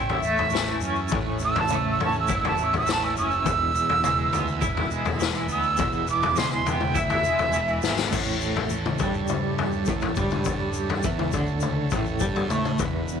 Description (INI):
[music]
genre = psychedelic rock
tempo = 103 BPM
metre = 4/4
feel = straight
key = A major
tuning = A4 = 439 Hz
[part]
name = jazz flute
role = melody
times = 0.0-8.1 s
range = E5 to E6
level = -25 LUFS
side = right 4 dB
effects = slapback echo
[part]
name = overdriven combo organ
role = sustained chords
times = 0.0-13.2 s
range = E3 to F#5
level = -35 LUFS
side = right 18 dB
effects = none
[part]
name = twangy electric guitar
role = riff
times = 0.0-13.2 s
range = E2 to E4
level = -28 LUFS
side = right 1 dB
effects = tremolo, double-tracked left and right
[part]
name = fuzz picked electric bass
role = bass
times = 0.0-13.2 s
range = E1 to A2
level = -31 LUFS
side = right 1 dB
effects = overdrive
[part]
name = raw garage drum kit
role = drums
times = 0.1-12.9 s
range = crash cymbal, kick drum, snare drum, toms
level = -27 LUFS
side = left 5 dB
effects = none
[part]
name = tube shaker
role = percussion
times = 0.2-13.2 s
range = none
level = -40 LUFS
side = left 16 dB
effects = none
[sound]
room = studio ambience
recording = 1960s-style stereo with parts hard left and right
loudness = -22 LUFS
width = side -7 dB against mid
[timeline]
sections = 0.0-8.1 A section; 8.1-13.2 B section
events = flute solo 0.0-8.1; drum fill 7.8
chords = 0.0 A; 3.5 E; 8.1 A